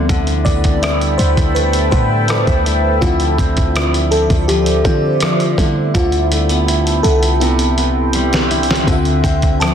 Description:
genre	contemporary R&B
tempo	82 BPM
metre	4/4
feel	straight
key	D dorian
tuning	A4 = 441 Hz
part	FM electric piano with soft pad layer	accompaniment	0.0-9.7 s	D3 to E5	-19 LUFS	left 1 dB	chorus
part	deep dark ambient pad	sustained chords	0.0-9.7 s	B3 to D6	-20 LUFS	right 1 dB	chorus, built-in reverb
part	nylon-string guitar	arpeggios	0.0-9.7 s	C3 to E4	-21 LUFS	left 1 dB	tape echo
part	clean 808-style bass	bass	0.0-9.7 s	C2 to D3	-18 LUFS	equal	none
part	dusty soul sampler-style drum kit	drums	0.1-9.7 s	hi-hat, kick drum, rim click, snare drum	-18 LUFS	equal	soft clipping on snare
part	glassy synth bell	texture	9.2-9.7 s	G5 to A5	-24 LUFS	left 1 dB	chorus, tape echo
room	light reverb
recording	dense, heavily limited modern master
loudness	-12 LUFS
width	side -8 dB against mid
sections	0.0-8.9 A section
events	FM electric piano solo 0.0-8.9; drum fill 5.9-8.9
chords	0.0 D13sus4; 3.0 Dm9; 5.6 Fmaj9#11/D; 7.4 Cmaj7; 8.9 Dm9

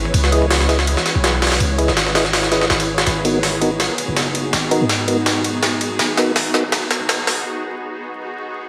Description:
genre	drum and bass, jungle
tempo	164 BPM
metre	4/4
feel	swing 53% on 16ths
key	unclear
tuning	A4 = 440 Hz
part	long sustained 808-style bass	bass	0.0-7.4 s	F#1 to G#2	-24 LUFS	equal	none
part	jungle sampler-style drum kit	drums	0.1-7.4 s	hi-hat, kick drum, ride cymbal, snare drum	-20 LUFS	equal	high-pass filter on snare, high-pass filter on hats, high-pass filter on cymbals, high-pass filter on kick, high-pass filter on room
part	percussive tonewheel organ	stabs	0.3-6.6 s	B3 to D#5	-24 LUFS	equal	chorus vibrato, slow rotary speaker, dub echo
room	moderate lush hall reverb, RT60 1.9 s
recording	vinyl crackle, high-pass filter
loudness	-18 LUFS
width	mono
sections	0.0-8.7 A section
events	build-up 0.0-8.7; drum fill 3.1-7.5; break 7.5-8.7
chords	0.0 C#m7; 3.1 G#m7

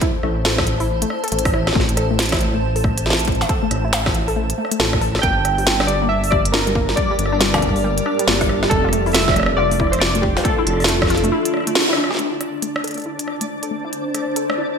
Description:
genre	IDM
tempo	138 BPM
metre	4/4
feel	swing 62% on 16ths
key	A phrygian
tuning	A4 = 439 Hz
part	granular cloud pad	sustained chords	0.0-14.8 s	G3 to A5	-24 LUFS	equal	built-in reverb, sidechain pumping
part	warbly dusty pluck	arpeggios	0.0-14.7 s	G3 to A4	-25 LUFS	left 2 dB	chorus, digital delay
part	electronic kick drum	drums	0.0-11.1 s	none	-22 LUFS	equal	none
part	industrial drum kit	drums	0.0-14.6 s	hi-hat, rim click, snare drum	-21 LUFS	equal	gated reverb
part	dark detuned saw bass	bass	0.2-11.3 s	F1 to A1	-22 LUFS	equal	none
part	warbly lo-fi synth keys	melody	5.2-11.7 s	G4 to G5	-21 LUFS	equal	chorus, digital delay
part	twinkling granular texture	texture	12.5-14.8 s	D4 to D5	-31 LUFS	equal	built-in reverb, ensemble chorus
room	moderate lush hall reverb, RT60 2.0 s, digital ambience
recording	bright 1980s-style digital production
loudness	-16 LUFS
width	side -6 dB against mid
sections	0.0-12.2 A section; 12.2-14.8 B section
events	kick drops out 11.3-12.2; band accent 11.8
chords	0.0 Am; 5.2 Gmadd9; 8.7 Dmadd9/F; 12.2 Am

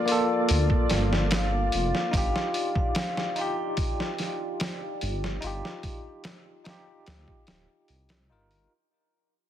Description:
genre	trip hop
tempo	73 BPM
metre	4/4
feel	straight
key	unclear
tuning	A4 = 442 Hz
part	vibraphone with hard mallets	melody	0.0-7.9 s	D5 to G5	-33 LUFS	equal	vintage 12-bit sampler grit, tape echo
part	bell-like tine electric piano	accompaniment	0.0-8.7 s	Bb3 to Bb4	-31 LUFS	equal	medium stereo tremolo, vintage 12-bit sampler grit
part	deep dark ambient pad	sustained chords	0.0-8.7 s	F4 to D5	-34 LUFS	left 1 dB	chorus, built-in reverb
part	trip hop sampler-style drum kit	drums	0.1-8.7 s	hi-hat, kick drum, snare drum	-29 LUFS	equal	none
part	dark detuned saw bass	bass	0.5-8.7 s	D1 to D2	-27 LUFS	equal	none
room	digital ambience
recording	heavily compressed radio sound, multiband compression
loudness	-24 LUFS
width	side -11 dB against mid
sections	0.0-8.7 A section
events	fade-out 0.0-8.7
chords	0.0 Gm7; 2.1 Ebadd9/G

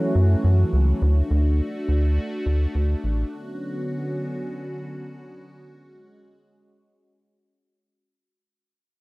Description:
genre	pop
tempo	104 BPM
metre	4/4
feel	straight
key	unclear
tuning	A4 = 440 Hz
part	sweeping resonant pad	sustained chords	0.0-7.9 s	D3 to F#4	-28 LUFS	equal	lush chorus
part	rubbery square bass	bass	0.2-3.2 s	A1 to F#2	-18 LUFS	equal	none
room	light reverb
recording	dry, gritty hardware recording, cassette tape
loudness	-20 LUFS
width	side -24 dB against mid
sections	0.0-7.9 A section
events	fade-out 0.0-7.9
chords	0.0 F#m7; 1.0 D; 3.3 Bmadd9; 5.6 C#sus4

